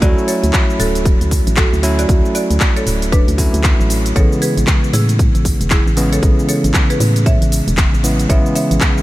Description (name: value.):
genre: deep house.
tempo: 116 BPM.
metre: 4/4.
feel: swing 60% on 16ths.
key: D lydian.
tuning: A4 = 439 Hz.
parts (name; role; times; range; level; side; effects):
marimba with medium hard mallets; melody; 0.0-8.9 s; D4 to E5; -23 LUFS; right 1 dB; diffuse ambient delay.
bell-like tine electric piano; stabs; 0.0-9.0 s; C#3 to E4; -18 LUFS; equal; vintage 12-bit sampler grit, sidechain pumping, diffuse ambient delay.
organ-like FM bass; bass; 0.0-8.8 s; D1 to A2; -17 LUFS; equal; sidechain pumping.
electronic kick drum; drums; 0.0-8.9 s; none; -14 LUFS; equal; none.
house drum kit; drums; 0.0-9.0 s; cabasa, handclaps, hi-hat; -21 LUFS; equal; none.
room: little or no reverb.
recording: vinyl crackle.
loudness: -12 LUFS.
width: side -16 dB against mid.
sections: 0.0-9.0 A section.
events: none.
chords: 0.0 Dmaj9; 4.2 Amaj9.